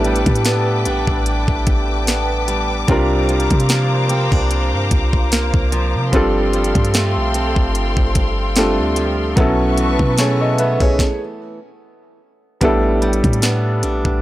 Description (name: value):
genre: contemporary R&B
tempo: 74 BPM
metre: 4/4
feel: swing 54% on 16ths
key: unclear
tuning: A4 = 440 Hz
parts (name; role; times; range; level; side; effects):
- clear baby grand piano; accompaniment; 0.0-14.2 s; F#3 to E5; -20 LUFS; equal; none
- warm studio string section; sustained chords; 0.0-11.0 s; A4 to D6; -23 LUFS; left 1 dB; none
- picked steel-string acoustic guitar; arpeggios; 0.0-14.2 s; G2 to D4; -24 LUFS; right 2 dB; none
- clean 808-style bass; bass; 0.0-14.2 s; G1 to C3; -19 LUFS; equal; none
- trap drum kit; drums; 0.0-14.2 s; hi-hat, kick drum, snare drum; -18 LUFS; equal; none
room: studio reverb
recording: dry, gritty hardware recording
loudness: -14 LUFS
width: side -15 dB against mid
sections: 0.0-12.6 A section; 12.6-14.2 A section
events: stop 11.0-12.6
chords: 0.0 A9sus4; 2.9 C9sus4; 6.1 G9sus4; 9.4 B9sus4; 12.6 A9sus4